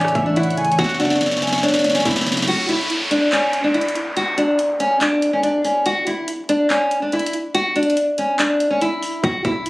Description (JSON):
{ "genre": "hip hop, trap", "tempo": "142 BPM", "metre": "4/4", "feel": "half-time", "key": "unclear", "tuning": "A4 = 440 Hz", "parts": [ { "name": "nylon-string guitar", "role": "melody", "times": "0.0-9.6 s", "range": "C#4 to F#4", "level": "-18 LUFS", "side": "equal", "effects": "low-pass filter, slapback echo" }, { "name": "warm velvety synth lead", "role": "second line", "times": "0.0-1.2 s", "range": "D5 to G#5", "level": "-22 LUFS", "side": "right 1 dB", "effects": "chorus, slapback echo" }, { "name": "mellow tine electric piano", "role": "accompaniment", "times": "0.0-2.5 s", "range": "F#2 to C#5", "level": "-24 LUFS", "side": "equal", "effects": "slow stereo tremolo, low-pass filter" }, { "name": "deep dark ambient pad", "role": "sustained chords", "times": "0.0-2.5 s", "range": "A4 to C#6", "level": "-33 LUFS", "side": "right 1 dB", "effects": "chorus, built-in reverb" }, { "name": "trap drum kit", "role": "drums", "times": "0.0-9.7 s", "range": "crash cymbal, handclaps, hi-hat, kick drum, rim click, snare drum", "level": "-22 LUFS", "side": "equal", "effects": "vintage 12-bit sampler grit" }, { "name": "clean 808-style bass", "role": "bass", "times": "0.2-2.3, 9.2-9.7 s", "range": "F#1 to C#2", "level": "-33 LUFS", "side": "equal", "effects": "none" }, { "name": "downlifter", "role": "sound effects", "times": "2.5-5.9 s", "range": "none", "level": "-26 LUFS", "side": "equal", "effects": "none" } ], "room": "light reverb", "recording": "recorded on a phone in the room, studio reverb, vinyl crackle, compression", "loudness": "-16 LUFS", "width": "side -20 dB against mid", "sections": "0.0-2.5 A section; 2.5-9.7 B section", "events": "drum fill 0.8-2.5; kick muted 2.5-9.2", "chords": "0.0 A; 0.8 F#m; 2.5 N.C.", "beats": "0.36 | 0.79 1.21 1.63 2.05 | 2.48 2.90 3.32 3.74 | 4.17 4.59 5.01 5.43 | 5.86 6.28 6.70 7.12 | 7.55 7.97 8.39 8.81 | 9.24 9.66" }